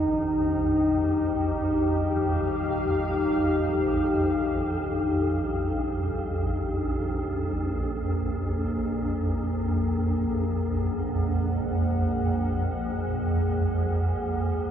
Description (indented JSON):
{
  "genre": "dark ambient drone",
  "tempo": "free time",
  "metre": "none",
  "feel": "none",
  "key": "unclear",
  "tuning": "A4 = 437 Hz",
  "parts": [
    { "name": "deep dark ambient pad", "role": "sustained chords", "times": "0.0-14.7 s", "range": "Bb3 to Gb5", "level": "-26 LUFS", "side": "left 1 dB", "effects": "chorus, built-in reverb" },
    { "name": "swarming drone", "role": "drone", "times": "0.0-14.7 s", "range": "Bb1 to F2", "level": "-27 LUFS", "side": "right 1 dB", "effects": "built-in reverb" }
  ],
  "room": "wet cathedral reverb, RT60 6.6 s",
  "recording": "in a vast, echoing space",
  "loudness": "-24 LUFS",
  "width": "side -9 dB against mid",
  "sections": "0.0-14.7 A section",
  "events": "fade-in on synth drone 0.0-14.7",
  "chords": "0.0 Ebadd9; 7.0 Gbadd9",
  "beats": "free time"
}